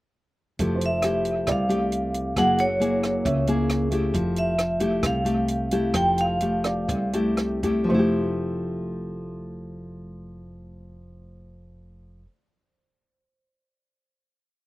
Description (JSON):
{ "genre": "bossa nova", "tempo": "116-136 BPM", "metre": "4/4", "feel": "straight", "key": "F major", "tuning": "A4 = 442 Hz", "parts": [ { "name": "dark baby grand piano", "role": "accompaniment", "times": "0.6-14.6 s", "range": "A4 to Fb5", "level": "-35 LUFS", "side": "right 3 dB", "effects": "none" }, { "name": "nylon-string guitar", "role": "accompaniment", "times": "0.6-12.4 s", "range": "C3 to Ab4", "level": "-24 LUFS", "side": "left 1 dB", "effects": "none" }, { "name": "upright bass", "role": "bass", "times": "0.6-12.2 s", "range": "F1 to Db2", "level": "-31 LUFS", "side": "right 1 dB", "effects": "none" }, { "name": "compact cocktail drum kit", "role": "drums", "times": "0.6-7.8 s", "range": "hi-hat, kick drum, rim click", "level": "-31 LUFS", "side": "right 1 dB", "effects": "none" }, { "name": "vibraphone with medium hard mallets", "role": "melody", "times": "0.9-7.1 s", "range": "Db5 to G5", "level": "-25 LUFS", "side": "right 1 dB", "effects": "none" } ], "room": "little or no reverb", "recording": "recorded outdoors, with no room sound", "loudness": "-21 LUFS", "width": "side -18 dB against mid", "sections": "0.6-7.9 A section; 7.9-12.0 final chord", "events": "slowing down 4.1-7.9", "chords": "0.6 Fmaj9; 2.4 Gb9; 4.1 Fmaj9", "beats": "| 0.59 1.04 1.48 1.92 | 2.36 2.81 3.25 3.69 | 4.13 4.58 5.03 5.48 | 5.94 6.41 6.89 7.38 | 7.89 8.41 8.93 9.45 | 9.97 10.49 11.01 11.52" }